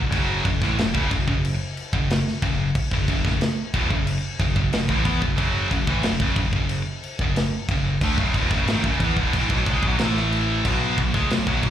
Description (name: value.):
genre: heavy metal.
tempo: 91 BPM.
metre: 4/4.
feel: straight.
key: unclear.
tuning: A4 = 440 Hz.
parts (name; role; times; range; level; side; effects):
heavy high-gain guitar; riff; 0.0-11.7 s; C#2 to B3; -23 LUFS; equal; distortion, slapback echo.
growling picked electric bass; bass; 0.0-11.7 s; C#1 to E2; -26 LUFS; equal; overdrive.
tight metal drum kit; drums; 0.1-11.7 s; crash cymbal, kick drum, snare drum; -24 LUFS; equal; none.
room: little or no reverb.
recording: live gig heard through the venue's PA, club reverb.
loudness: -20 LUFS.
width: side -10 dB against mid.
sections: 0.0-11.7 A section.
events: none.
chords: 0.1 F#5; 10.0 A5; 10.6 B5.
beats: | 0.12 0.78 1.43 2.09 | 2.75 3.41 4.07 4.72 | 5.38 6.04 6.70 7.36 | 8.02 8.67 9.33 9.99 | 10.65 11.31.